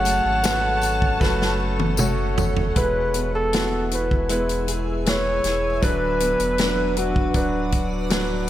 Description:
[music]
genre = pop ballad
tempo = 78 BPM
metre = 4/4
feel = straight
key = unclear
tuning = A4 = 440 Hz
[part]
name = mellow flugelhorn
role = melody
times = 0.0-8.1 s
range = F#4 to F#5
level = -24 LUFS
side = equal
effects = none
[part]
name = warm studio violin section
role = second line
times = 0.0-2.4 s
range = A5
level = -32 LUFS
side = left 3 dB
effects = tape echo
[part]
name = warm concert grand piano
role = accompaniment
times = 0.0-8.5 s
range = B2 to C#5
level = -27 LUFS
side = right 1 dB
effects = none
[part]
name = granular cloud pad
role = sustained chords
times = 0.0-8.5 s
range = A4 to E6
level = -33 LUFS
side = equal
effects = built-in reverb
[part]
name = fingerpicked steel-string acoustic guitar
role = arpeggios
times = 0.0-8.5 s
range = F#2 to A4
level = -31 LUFS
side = left 2 dB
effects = none
[part]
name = warm sub bass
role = bass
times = 0.0-8.5 s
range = D1 to G#1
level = -27 LUFS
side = equal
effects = none
[part]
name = natural country drum kit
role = drums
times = 0.1-8.5 s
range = hi-hat, kick drum, snare drum, toms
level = -24 LUFS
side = equal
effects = none
[part]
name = tambourine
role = percussion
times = 0.1-2.6 s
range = none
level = -33 LUFS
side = left 8 dB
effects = none
[sound]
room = light reverb, small room ambience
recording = none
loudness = -19 LUFS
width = side -13 dB against mid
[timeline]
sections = 0.0-2.8 A section; 2.8-8.5 A section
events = drum fill 1.2-2.8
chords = 0.0 F#m; 2.8 E; 5.8 Bm/D

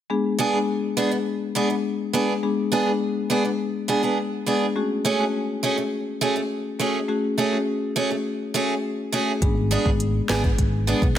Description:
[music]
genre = dancehall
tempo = 103 BPM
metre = 4/4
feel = straight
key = unclear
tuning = A4 = 440 Hz
[part]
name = marimba with medium mallets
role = accompaniment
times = 0.1-11.1 s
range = G#3 to G#4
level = -24 LUFS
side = left 4 dB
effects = none
[part]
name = picked steel-string acoustic guitar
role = arpeggios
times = 0.4-11.1 s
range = A3 to G#4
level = -24 LUFS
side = right 4 dB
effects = none
[part]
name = fingered electric bass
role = bass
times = 9.4-11.1 s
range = G#1 to B1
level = -24 LUFS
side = equal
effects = none
[part]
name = afro-pop drum kit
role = drums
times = 9.4-11.2 s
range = hi-hat, kick drum, rim click, snare drum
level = -22 LUFS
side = equal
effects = none
[sound]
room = light reverb, studio reverb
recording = none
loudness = -21 LUFS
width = side -10 dB against mid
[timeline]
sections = 0.1-11.2 A section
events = none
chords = 0.1 G#dim; 4.8 F#madd9; 9.4 G#dim

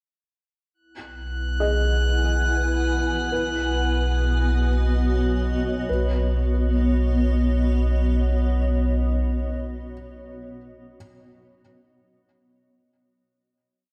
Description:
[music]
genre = ambient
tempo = free time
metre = none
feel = none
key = B major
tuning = A4 = 440 Hz
[part]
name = granular cloud pad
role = sustained chords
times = 1.4-9.2 s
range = B3 to G#5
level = -30 LUFS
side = equal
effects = built-in reverb
[part]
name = deep rumbling drone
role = bass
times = 1.2-9.2 s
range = B1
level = -25 LUFS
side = equal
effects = built-in reverb
[part]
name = organ-like drone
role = drone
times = 1.2-9.3 s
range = B3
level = -39 LUFS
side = equal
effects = ensemble chorus, built-in reverb
[part]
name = drifting glass-harmonics texture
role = texture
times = 1.1-5.9 s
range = F#6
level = -32 LUFS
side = equal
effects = chorus, built-in reverb
[part]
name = felt-muted upright piano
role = arpeggios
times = 1.6-11.0 s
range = G#4 to D#5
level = -34 LUFS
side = equal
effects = tape echo
[sound]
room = moderate concert hall reverb, RT60 2.2 s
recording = cassette tape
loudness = -23 LUFS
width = mono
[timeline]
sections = 0.7-5.9 A section; 5.9-8.5 final chord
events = fade-out on synth drone 0.7-5.9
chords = 0.7 Eadd9/B; 3.3 B

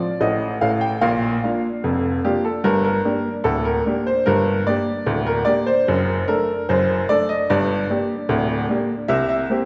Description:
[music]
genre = ragtime piano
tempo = 74 BPM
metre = 2/4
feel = straight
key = unclear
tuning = A4 = 440 Hz
[part]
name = bright upright piano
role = solo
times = 0.0-9.7 s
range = D1 to G5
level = -20 LUFS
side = equal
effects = none
[sound]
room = wet scoring stage reverb, RT60 1.7 s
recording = recorded in a church or concert hall, nothing above 7.9 kHz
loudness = -20 LUFS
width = mono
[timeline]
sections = 0.0-9.7 A section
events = none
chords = 0.0 F/A; 1.0 Bb; 2.6 Gm; 5.9 D/F#; 7.5 Gm; 9.1 C5

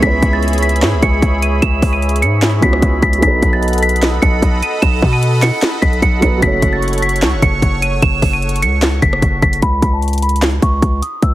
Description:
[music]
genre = hip hop, trap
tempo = 150 BPM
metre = 4/4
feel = half-time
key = C# minor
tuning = A4 = 439 Hz
[part]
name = celesta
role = melody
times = 0.0-11.3 s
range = A5 to E7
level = -18 LUFS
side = equal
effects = low-pass filter, ping-pong delay
[part]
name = felt-muted upright piano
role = accompaniment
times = 0.0-9.6 s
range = F#3 to C#5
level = -22 LUFS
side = right 3 dB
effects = low-pass filter
[part]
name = sweeping resonant pad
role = sustained chords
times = 0.0-9.6 s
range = G#4 to C#6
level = -22 LUFS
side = right 1 dB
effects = chorus
[part]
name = hard-hitting 808-style bass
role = bass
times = 0.0-11.3 s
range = F#1 to B2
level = -16 LUFS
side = equal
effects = none
[part]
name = trap drum kit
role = drums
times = 0.0-11.3 s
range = handclaps, hi-hat, kick drum, rim click, snare drum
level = -16 LUFS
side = equal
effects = overdrive
[sound]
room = digital ambience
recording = heavily compressed radio sound, multiband compression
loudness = -11 LUFS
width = side -15 dB against mid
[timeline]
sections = 0.0-9.6 A section; 9.6-11.3 B section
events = filter sweep 9.6-11.3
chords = 0.0 C#m7; 3.2 B7; 6.4 F#m; 9.6 C#5

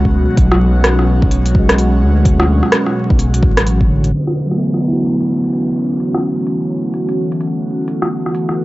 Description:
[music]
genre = future garage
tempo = 128 BPM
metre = 4/4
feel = swing 62% on 16ths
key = F# minor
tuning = A4 = 438 Hz
[part]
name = tine electric piano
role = accompaniment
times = 0.0-8.6 s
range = D3 to F#4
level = -18 LUFS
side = right 1 dB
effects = vintage 12-bit sampler grit, sidechain pumping, analog delay
[part]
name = airy breathy pad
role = sustained chords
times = 0.0-8.6 s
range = B2 to F#4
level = -19 LUFS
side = left 1 dB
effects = chorus, phaser, sidechain pumping
[part]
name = dark detuned saw bass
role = bass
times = 0.0-4.1 s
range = A1 to D2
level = -14 LUFS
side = equal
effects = none
[part]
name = electronic kick drum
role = drums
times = 0.0-3.9 s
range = none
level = -14 LUFS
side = equal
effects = overdrive
[part]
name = organic electronic drum kit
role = drums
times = 0.4-8.6 s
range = hi-hat, rim click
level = -16 LUFS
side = equal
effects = low-pass filter on hats, low-pass filter on snare, low-pass filter on room
[part]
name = downlifter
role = sound effects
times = 4.1-7.9 s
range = none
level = -32 LUFS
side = left 2 dB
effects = none
[sound]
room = light reverb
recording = dry, gritty hardware recording, transformer saturation, vinyl crackle, low-pass filter, nothing above 7.8 kHz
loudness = -12 LUFS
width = side -18 dB against mid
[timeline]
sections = 0.0-4.1 A section; 4.1-8.6 B section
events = filter sweep on drum 4.1-8.6; filter sweep on analog synth pad 4.1-8.6; filter sweep 4.1-8.6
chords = 0.0 Bm7; 4.1 F#m7

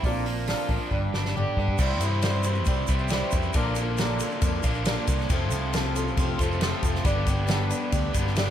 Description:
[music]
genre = folk rock and heartland rock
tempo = 137 BPM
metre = 4/4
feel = straight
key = C major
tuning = A4 = 440 Hz
[part]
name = warm upright piano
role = second line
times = 0.0-0.9 s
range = C4 to F4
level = -37 LUFS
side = right 7 dB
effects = none
[part]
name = picked swing-style acoustic guitar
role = accompaniment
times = 0.0-8.5 s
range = G2 to C5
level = -31 LUFS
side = left 2 dB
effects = none
[part]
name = tonewheel organ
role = sustained chords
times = 0.0-8.5 s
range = B3 to E5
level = -41 LUFS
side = right 1 dB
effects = none
[part]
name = overdriven electric guitar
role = riff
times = 0.0-8.5 s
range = F2 to G4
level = -30 LUFS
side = right 1 dB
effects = none
[part]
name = picked electric bass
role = bass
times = 0.0-8.5 s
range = F1 to G2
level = -28 LUFS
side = equal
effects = none
[part]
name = unplugged drum kit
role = drums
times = 0.0-8.5 s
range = crash cymbal, hi-hat, kick drum, ride cymbal, snare drum, toms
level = -27 LUFS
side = equal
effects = none
[part]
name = tube shaker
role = percussion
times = 1.8-8.5 s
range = none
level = -41 LUFS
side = right 9 dB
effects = none
[sound]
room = little or no reverb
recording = none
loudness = -23 LUFS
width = side -10 dB against mid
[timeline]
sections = 0.0-1.8 A section; 1.8-8.5 B section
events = drum fill 0.9-1.8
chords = 0.0 Bb; 0.9 G; 1.8 C; 3.5 Bb; 5.3 F; 7.0 G

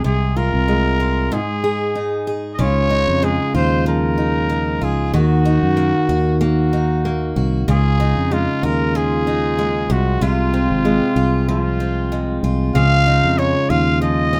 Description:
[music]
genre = acoustic pop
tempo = 94 BPM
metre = 4/4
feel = swing 55% on 16ths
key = Db major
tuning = A4 = 438 Hz
[part]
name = growling trumpet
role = melody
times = 0.0-14.4 s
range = F4 to F5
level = -24 LUFS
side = equal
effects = none
[part]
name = picked steel-string acoustic guitar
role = accompaniment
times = 0.0-14.4 s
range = Ab2 to Ab4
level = -22 LUFS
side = equal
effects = none
[part]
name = fingered electric bass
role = bass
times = 0.0-14.4 s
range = Ab1 to Gb2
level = -21 LUFS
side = equal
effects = none
[sound]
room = moderate studio reverb, RT60 0.6 s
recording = none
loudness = -18 LUFS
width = mono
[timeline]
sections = 0.0-2.6 A section; 2.6-14.4 B section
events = break 1.3-2.6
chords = 0.0 Fm/C; 1.3 Ab5; 2.6 Dbadd9; 5.1 Ebm; 7.7 Dbadd9; 9.9 Fm; 12.8 Dbadd9

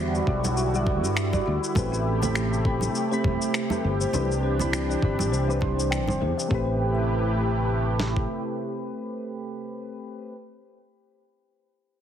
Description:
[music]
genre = sunset chillout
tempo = 101 BPM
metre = 4/4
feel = swing 57% on 16ths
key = A dorian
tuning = A4 = 445 Hz
[part]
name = soft electric-piano-like synth keys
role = accompaniment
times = 0.0-10.4 s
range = E3 to B5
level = -30 LUFS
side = moving between left 4 dB and right 5 dB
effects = chorus, auto-pan, low-pass filter, digital delay
[part]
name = lush unison pad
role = sustained chords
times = 0.0-9.6 s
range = C3 to B4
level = -29 LUFS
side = equal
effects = chorus, phaser
[part]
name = kalimba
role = arpeggios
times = 0.0-6.8 s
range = F#4 to G5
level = -34 LUFS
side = left 4 dB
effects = low-pass filter, digital delay
[part]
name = fretless electric bass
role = bass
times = 0.0-8.3 s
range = E1 to G2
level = -27 LUFS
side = equal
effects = wide subtle chorus
[part]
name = electronic shaker and finger snaps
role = drums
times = 0.1-6.5 s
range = none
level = -32 LUFS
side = left 2 dB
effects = overdrive, studio reverb
[part]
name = dusty soul sampler-style drum kit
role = drums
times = 0.3-8.3 s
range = kick drum, snare drum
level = -27 LUFS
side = equal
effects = overdrive, studio reverb
[part]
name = congas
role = percussion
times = 0.4-6.2 s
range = none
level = -34 LUFS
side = right 2 dB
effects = none
[sound]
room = moderate digital room reverb, RT60 1.1 s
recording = heavily compressed radio sound, multiband compression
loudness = -23 LUFS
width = side -9 dB against mid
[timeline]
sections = 0.0-6.5 A section; 6.5-8.9 B section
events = filter sweep on synth keys 0.0-6.5; filter sweep on kalimba 0.0-6.5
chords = 0.0 Em9; 1.8 Am9; 4.1 Cmaj9; 6.5 Am9

